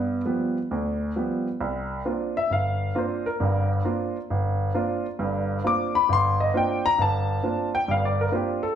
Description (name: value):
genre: jazz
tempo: 134 BPM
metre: 4/4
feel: swing 65% on 8ths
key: unclear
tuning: A4 = 441 Hz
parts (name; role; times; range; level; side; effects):
- warm baby grand piano; solo; 0.0-8.8 s; G1 to D6; -22 LUFS; equal; none
room: wet large studio reverb, RT60 0.8 s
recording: heard from further back in the room, nothing above 10.5 kHz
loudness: -22 LUFS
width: side -9 dB against mid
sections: 0.0-1.6 A section; 1.6-8.8 B section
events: none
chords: 0.0 G7; 1.6 C9sus4